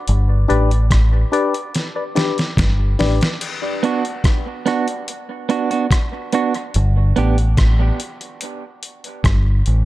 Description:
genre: dub reggae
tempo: 72 BPM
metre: 4/4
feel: straight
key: B minor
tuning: A4 = 440 Hz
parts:
  - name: deep dub fingered electric bass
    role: bass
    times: 0.1-9.8 s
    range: G1 to A1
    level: -15 LUFS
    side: equal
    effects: none
  - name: dusty soul sampler-style drum kit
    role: drums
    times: 0.1-9.8 s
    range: crash cymbal, hi-hat, kick drum, rim click, snare drum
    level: -19 LUFS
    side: equal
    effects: none
  - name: percussive organ stab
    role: stabs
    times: 0.5-3.2 s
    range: D4 to D5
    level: -22 LUFS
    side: left 4 dB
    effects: chorus, dub echo
  - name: clean electric guitar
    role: accompaniment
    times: 3.8-7.4 s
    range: B3 to G4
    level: -21 LUFS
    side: right 6 dB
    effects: dub echo
room: light reverb, digital ambience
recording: dark, warm production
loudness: -15 LUFS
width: side -16 dB against mid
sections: 0.0-3.4 A section; 3.4-9.8 B section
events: break 0.0-3.4, 3.4-6.7; drum fill 1.7-3.4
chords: 0.1 G; 3.4 Bm; 6.7 N.C.

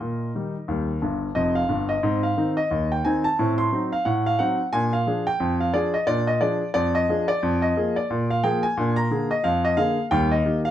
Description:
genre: ragtime piano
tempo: 89 BPM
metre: 2/4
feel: swing 60% on 16ths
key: unclear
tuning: A4 = 440 Hz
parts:
  - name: clear concert grand piano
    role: solo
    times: 0.0-10.7 s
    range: F1 to C6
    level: -20 LUFS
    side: equal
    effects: none
room: light reverb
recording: dark, warm production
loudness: -20 LUFS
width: side -11 dB against mid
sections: 0.0-2.0 A section; 2.0-10.7 B section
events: grand piano fill 1.0-2.0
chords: 0.0 Eb; 2.0 Ab; 3.4 Adim7; 4.7 Bb7; 10.1 Eb

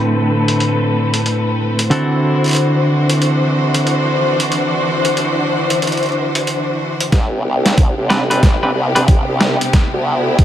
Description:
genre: glitch hop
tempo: 92 BPM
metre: 4/4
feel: swing 63% on 16ths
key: A dorian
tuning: A4 = 441 Hz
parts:
  - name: clear symphonic string section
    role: sustained chords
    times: 0.0-10.4 s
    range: C3 to C5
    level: -18 LUFS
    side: left 1 dB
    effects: sidechain pumping, low-pass filter
  - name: semi-hollow electric guitar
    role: stabs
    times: 0.0-9.0 s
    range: A2 to B4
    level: -17 LUFS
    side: equal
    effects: sidechain pumping, low-pass filter, ping-pong delay
  - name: boom bap sampler-style drum kit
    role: drums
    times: 0.5-10.4 s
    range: hi-hat, snare drum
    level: -19 LUFS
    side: equal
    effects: low-pass filter on snare, low-pass filter on hats
  - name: formant-sweep wobble bass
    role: bass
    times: 7.1-10.4 s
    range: G1 to D2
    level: -18 LUFS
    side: equal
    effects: chorus, overdrive, high-pass filter
  - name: electronic kick drum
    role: drums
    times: 7.1-10.4 s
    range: none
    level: -11 LUFS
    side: equal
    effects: overdrive
room: light reverb, digital ambience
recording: none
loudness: -13 LUFS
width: side -11 dB against mid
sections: 0.0-7.1 A section; 7.1-10.4 B section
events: filter sweep on clean electric guitar 0.0-7.1; build-up 7.1-10.4; drum fill 7.1-10.4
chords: 0.0 Am11; 1.9 D9; 7.1 Am11

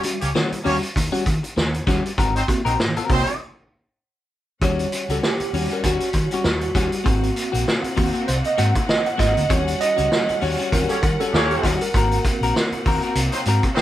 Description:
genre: funk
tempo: 98 BPM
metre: 4/4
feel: swing 56% on 16ths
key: unclear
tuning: A4 = 440 Hz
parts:
  - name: clean electric guitar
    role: accompaniment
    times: 0.0-13.8 s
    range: G3 to Bb4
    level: -26 LUFS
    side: left 5 dB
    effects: none
  - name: tine electric piano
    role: stabs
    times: 0.0-13.8 s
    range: Ab2 to Gb5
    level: -25 LUFS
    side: right 2 dB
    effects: fast stereo tremolo
  - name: vintage drum kit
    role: drums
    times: 0.0-13.8 s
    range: hi-hat, kick drum, snare drum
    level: -22 LUFS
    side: equal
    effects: none
  - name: warm horn section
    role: second line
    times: 0.2-3.4, 10.9-13.8 s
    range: Gb3 to Db5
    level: -24 LUFS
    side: right 1 dB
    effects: none
  - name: hollow-body short-scale fingered electric bass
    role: bass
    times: 0.2-13.6 s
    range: Ab1 to Eb3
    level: -24 LUFS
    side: equal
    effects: none
  - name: rich studio string section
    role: sustained chords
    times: 4.6-13.8 s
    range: G3 to F#5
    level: -30 LUFS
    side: left 1 dB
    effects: none
room: moderate studio reverb, RT60 0.5 s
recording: band playing live in one room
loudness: -18 LUFS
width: side -13 dB against mid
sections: 0.0-4.6 A section; 4.6-13.8 B section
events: break 3.4-4.6; tine electric piano solo 4.6-13.8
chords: 0.0 Eb7#9; 2.2 Ab9; 4.6 Eb7#9; 7.1 Ab9; 9.5 Eb7#9; 11.9 Ab9

